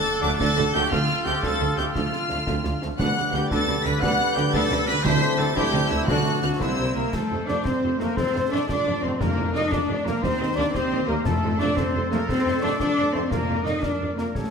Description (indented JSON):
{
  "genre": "cinematic, heroic adventure film score",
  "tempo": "116 BPM (dotted quarters)",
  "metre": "6/8",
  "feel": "straight",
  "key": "F mixolydian from 7.1 s",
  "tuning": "A4 = 436 Hz",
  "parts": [
    { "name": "warm symphonic violin section", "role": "melody", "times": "0.0-14.5 s", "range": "A4 to B6", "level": "-31 LUFS", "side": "left 2 dB", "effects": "none" },
    { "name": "clear clarinet", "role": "second line", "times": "0.0-14.5 s", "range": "D4 to D5", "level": "-35 LUFS", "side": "left 2 dB", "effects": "none" },
    { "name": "mellow hollow concert flute", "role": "second line", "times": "0.0-14.5 s", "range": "A5 to Eb6", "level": "-36 LUFS", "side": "left 2 dB", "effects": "none" },
    { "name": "warm oboe", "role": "second line", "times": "0.0-7.0 s", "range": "C5 to F#5", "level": "-37 LUFS", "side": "right 2 dB", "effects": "none" },
    { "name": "warm symphonic violin section", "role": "second line", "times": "0.0-14.5 s", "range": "A3 to G5", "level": "-36 LUFS", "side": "left 3 dB", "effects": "none" },
    { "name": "clear symphonic viola section", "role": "accompaniment", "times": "0.0-14.4 s", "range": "D4 to F#5", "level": "-33 LUFS", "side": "right 1 dB", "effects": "none" },
    { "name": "warm trumpet section", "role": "stabs", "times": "0.0-14.5 s", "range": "D4 to F#5", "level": "-29 LUFS", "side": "equal", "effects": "none" },
    { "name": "concert snare drum, concert bass drum and clash cymbals", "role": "drums", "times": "0.1-14.5 s", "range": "none", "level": "-33 LUFS", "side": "equal", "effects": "none" },
    { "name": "dark French horn section", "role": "sustained chords", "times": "0.2-14.5 s", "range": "A3 to C5", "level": "-32 LUFS", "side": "left 4 dB", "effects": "none" },
    { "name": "warm trombone section", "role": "sustained chords", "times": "0.2-14.2 s", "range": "D3 to Bb3", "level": "-35 LUFS", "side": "right 3 dB", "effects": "none" },
    { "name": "clear symphonic double bass section", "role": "bass", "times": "0.2-14.4 s", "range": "A1 to F2", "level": "-31 LUFS", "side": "right 2 dB", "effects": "none" },
    { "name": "mellow tuba", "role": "bass", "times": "0.2-14.4 s", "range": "F1 to Eb2", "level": "-31 LUFS", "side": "right 3 dB", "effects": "none" },
    { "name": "rich studio cello section", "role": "bass", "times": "0.2-14.5 s", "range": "C3 to Eb4", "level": "-28 LUFS", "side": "right 1 dB", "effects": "none" },
    { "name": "timpani", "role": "percussion", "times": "3.0-6.6, 9.2-13.8 s", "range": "F2 to D3", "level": "-29 LUFS", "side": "equal", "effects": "none" }
  ],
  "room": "wet recital hall reverb, RT60 1.5 s",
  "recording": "none",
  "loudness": "-21 LUFS",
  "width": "side -6 dB against mid",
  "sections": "0.0-7.1 A section; 7.1-14.5 B section",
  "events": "none",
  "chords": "0.0 D; 0.9 F/D; 3.0 G/D; 5.0 C6/D; 6.1 D; 6.6 C7; 7.1 F; 9.2 Bb/F; 10.2 Eb; 11.3 F; 12.3 F7; 13.3 Bb/F",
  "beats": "0.40 | 0.92 1.43 | 1.95 2.47 | 2.99 3.51 | 4.03 4.54 | 5.05 5.56 | 6.08 6.60 | 7.13 7.65 | 8.16 8.68 | 9.20 9.72 | 10.23 10.74 | 11.26 11.77 | 12.28 12.79 | 13.31 13.83 | 14.36"
}